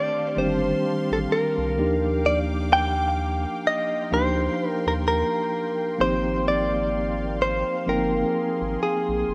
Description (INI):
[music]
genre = R&B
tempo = 64 BPM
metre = 4/4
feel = swing 58% on 16ths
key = unclear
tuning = A4 = 440 Hz
[part]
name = direct-recorded clean electric guitar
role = melody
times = 0.0-9.3 s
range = Ab4 to G5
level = -26 LUFS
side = equal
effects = digital delay
[part]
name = mellow tine electric piano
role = accompaniment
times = 0.0-9.3 s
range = Eb3 to G5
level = -29 LUFS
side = equal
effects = none
[part]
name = warm analog pad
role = sustained chords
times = 0.0-9.3 s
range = Bb3 to D6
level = -36 LUFS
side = equal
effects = chorus
[part]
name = round analog bass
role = bass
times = 0.4-9.3 s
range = F1 to Eb2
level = -31 LUFS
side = equal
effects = none
[sound]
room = light reverb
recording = rough home demo mix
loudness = -24 LUFS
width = mono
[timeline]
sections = 0.0-9.3 A section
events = none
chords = 0.0 F13; 1.8 Ebmaj7; 6.0 Abmaj13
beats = 0.38 1.31 | 2.25 3.19 4.12 5.06 | 6.00 6.94 7.88 8.81